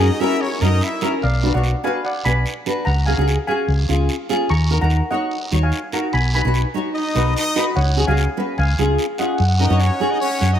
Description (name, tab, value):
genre	calypso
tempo	147 BPM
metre	4/4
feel	swing 53% on 16ths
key	F# major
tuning	A4 = 440 Hz
part	steel pan	melody	0.0-10.5 s	C#5 to C#6	-25 LUFS	equal	none
part	brilliant horn section	second line	0.0-1.1, 6.9-10.6 s	C#4 to E5	-24 LUFS	left 1 dB	none
part	nylon-string guitar	accompaniment	0.0-10.6 s	C#4 to C#5	-21 LUFS	equal	double-tracked left and right
part	hollow-body short-scale fingered electric bass	bass	0.0-10.6 s	B1 to F#2	-17 LUFS	equal	none
part	guiro	percussion	0.0-10.5 s	none	-31 LUFS	right 2 dB	none
room	moderate plate reverb, RT60 2.5 s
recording	rough home demo mix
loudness	-16 LUFS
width	side -10 dB against mid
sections	0.0-10.6 A section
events	none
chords	0.0 F#; 1.2 Bm; 2.9 C#sus4; 3.7 C#; 4.5 D#m7; 6.1 B6; 7.8 C#7sus4; 8.6 C#; 9.4 F#5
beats	0.00 0.41 0.82 | 1.23 1.64 2.05 2.46 | 2.86 3.27 3.68 4.09 | 4.50 4.91 5.32 5.72 | 6.13 6.54 6.95 7.36 | 7.76 8.17 8.58 8.98 | 9.39 9.80 10.21